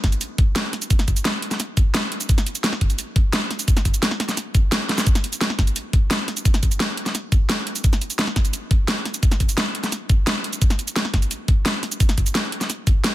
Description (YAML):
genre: drum and bass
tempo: 173 BPM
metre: 4/4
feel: straight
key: none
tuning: none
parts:
  - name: dubstep drum kit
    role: drums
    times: 0.0-13.1 s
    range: hi-hat, shaker, snare drum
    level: -22 LUFS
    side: equal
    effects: none
  - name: electronic kick drum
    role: drums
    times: 0.0-12.9 s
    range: none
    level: -18 LUFS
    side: equal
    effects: none
room: little or no reverb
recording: dense, heavily limited modern master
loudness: -18 LUFS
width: side -15 dB against mid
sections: 0.0-13.1 A section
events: drum fill 4.9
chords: none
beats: 0.21 0.56 | 0.91 1.25 1.60 1.95 | 2.29 2.64 2.99 3.33 | 3.68 4.03 4.37 4.72 | 5.07 5.41 5.76 6.11 | 6.45 6.80 7.15 7.49 | 7.84 8.19 8.54 8.88 | 9.23 9.57 9.92 10.27 | 10.62 10.96 11.31 11.66 | 12.00 12.35 12.70 13.04